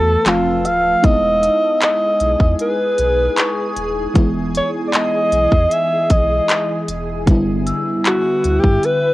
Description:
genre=contemporary R&B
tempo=77 BPM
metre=4/4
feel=straight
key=E major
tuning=A4 = 442 Hz
part: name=warm alto saxophone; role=melody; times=0.0-9.1 s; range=F4 to F5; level=-16 LUFS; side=equal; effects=cassette tape
part: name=FM electric piano with soft pad layer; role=accompaniment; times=0.0-9.1 s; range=D3 to F#4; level=-22 LUFS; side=equal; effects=chorus, tremolo
part: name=granular cloud pad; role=sustained chords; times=0.0-9.1 s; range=G#4 to E6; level=-28 LUFS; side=left 2 dB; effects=built-in reverb, sidechain pumping
part: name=warm sub bass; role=bass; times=0.0-8.8 s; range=D1 to G2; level=-23 LUFS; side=equal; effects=none
part: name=trap drum kit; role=drums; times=0.3-9.0 s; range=handclaps, hi-hat, kick drum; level=-16 LUFS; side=equal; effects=cassette tape
part: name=large celesta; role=texture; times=3.4-9.1 s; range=C#6 to E6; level=-30 LUFS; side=left 2 dB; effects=analog delay
room=light reverb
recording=home recording on cassette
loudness=-14 LUFS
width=side -17 dB against mid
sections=0.0-9.1 A section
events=none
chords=0.3 Fmaj7; 1.0 Emaj7; 7.3 G6

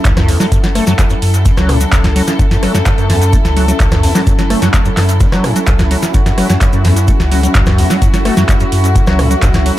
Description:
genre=acid house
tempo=128 BPM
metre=4/4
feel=straight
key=F# minor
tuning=A4 = 444 Hz
part: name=warm studio string section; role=sustained chords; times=0.0-9.8 s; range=F#3 to A4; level=-20 LUFS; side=left 1 dB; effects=sidechain pumping
part: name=liquid acid bass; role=riff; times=0.0-9.7 s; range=E2 to A3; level=-16 LUFS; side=equal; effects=chorus, cassette tape, analog delay
part: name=dusty soul sampler-style drum kit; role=drums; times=0.0-9.8 s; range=hi-hat, snare drum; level=-32 LUFS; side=right 1 dB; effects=none
part: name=tube shaker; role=percussion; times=0.0-9.6 s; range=none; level=-28 LUFS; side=left 3 dB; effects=none
part: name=granular cloud pad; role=texture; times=0.0-9.8 s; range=C#4 to F#5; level=-21 LUFS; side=equal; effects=built-in reverb, sidechain pumping
part: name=warm sub bass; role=bass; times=0.1-9.7 s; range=F#1 to F#2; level=-14 LUFS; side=equal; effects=tube saturation, sidechain pumping
part: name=booming analog drum machine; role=drums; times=0.1-9.8 s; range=handclaps, hi-hat, rim click, snare drum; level=-18 LUFS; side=equal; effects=dub echo
part: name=electronic kick drum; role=drums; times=0.1-9.5 s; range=none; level=-13 LUFS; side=equal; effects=none
room=light reverb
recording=echo-heavy mix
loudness=-9 LUFS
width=side -14 dB against mid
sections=0.0-9.8 A section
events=none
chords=0.0 F#m7

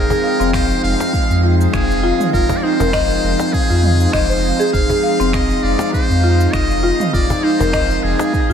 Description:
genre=organic downtempo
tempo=100 BPM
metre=4/4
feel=swing 55% on 16ths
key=F minor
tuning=A4 = 439 Hz
part: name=trumpet with metal mute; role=melody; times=0.0-8.5 s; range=Ab4 to F5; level=-22 LUFS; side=equal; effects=diffuse ambient delay
part: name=airy breathy pad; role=sustained chords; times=0.0-8.5 s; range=F3 to G5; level=-20 LUFS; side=equal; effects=chorus, sidechain pumping
part: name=warm sub bass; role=bass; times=0.0-8.5 s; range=F1 to F2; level=-18 LUFS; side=equal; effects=tube saturation
part: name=wind-like tuned noise texture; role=texture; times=0.0-8.5 s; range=F5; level=-27 LUFS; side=right 2 dB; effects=built-in reverb, wide subtle chorus
part: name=buzzing marimba with medium hard mallets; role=arpeggios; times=0.1-8.5 s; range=C4 to F5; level=-20 LUFS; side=left 1 dB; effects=tape echo
part: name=organic electronic drum kit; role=drums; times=0.1-8.5 s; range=finger snaps, shaker, toms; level=-28 LUFS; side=right 2 dB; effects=none
part: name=cajon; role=percussion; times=0.1-8.3 s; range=none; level=-24 LUFS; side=left 2 dB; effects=none
part: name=electronic kick drum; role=drums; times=0.5-8.5 s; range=none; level=-20 LUFS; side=equal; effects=none
room=moderate lush hall reverb, RT60 2.5 s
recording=dreamy mix soaked in reverb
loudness=-13 LUFS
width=side -8 dB against mid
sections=0.0-8.5 A section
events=none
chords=0.0 Fm7

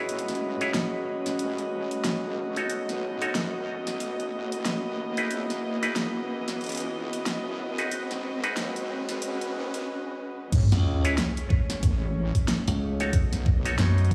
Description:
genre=glitch hop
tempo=92 BPM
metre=4/4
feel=swing 60% on 16ths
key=unclear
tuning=A4 = 440 Hz
part: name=muted chamber string section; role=sustained chords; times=0.0-14.1 s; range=C#3 to D#5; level=-38 LUFS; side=equal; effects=sidechain pumping, low-pass filter
part: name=auto-wah clav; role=stabs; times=0.0-13.8 s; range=D#4 to C#5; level=-35 LUFS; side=equal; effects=sidechain pumping, dub echo
part: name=riser and sub drop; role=sound effects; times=0.2-13.1 s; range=none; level=-35 LUFS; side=equal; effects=none
part: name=airy breathy pad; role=texture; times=0.0-9.9 s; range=C#4 to D#5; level=-36 LUFS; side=equal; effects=chorus, sidechain pumping
part: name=wobble bass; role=bass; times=0.1-13.8 s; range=G#1 to F#2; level=-36 LUFS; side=equal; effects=chorus, high-pass filter
part: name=pop drum kit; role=drums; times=0.1-14.1 s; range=crash cymbal, hi-hat, snare drum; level=-34 LUFS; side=equal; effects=overdrive
part: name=electronic kick drum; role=drums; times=10.5-14.1 s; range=none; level=-25 LUFS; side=equal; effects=overdrive
part: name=glassy slap bass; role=bass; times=10.7-14.1 s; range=C#2 to F#2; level=-26 LUFS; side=equal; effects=none
room=moderate plate reverb, RT60 3.4 s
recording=played on a big sound system in a bare room, stone room reverb, high-pass filter, small room ambience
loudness=-28 LUFS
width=mono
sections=0.0-10.5 A section; 10.5-14.1 B section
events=build-up 0.0-10.5; filter sweep on string section 0.0-10.5; riser 0.2-9.9; break 9.9-10.5; drop 10.5-14.1; impact 10.5-13.1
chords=0.1 Amaj9; 5.3 C#m9; 7.9 G#m7; 10.5 Amaj9

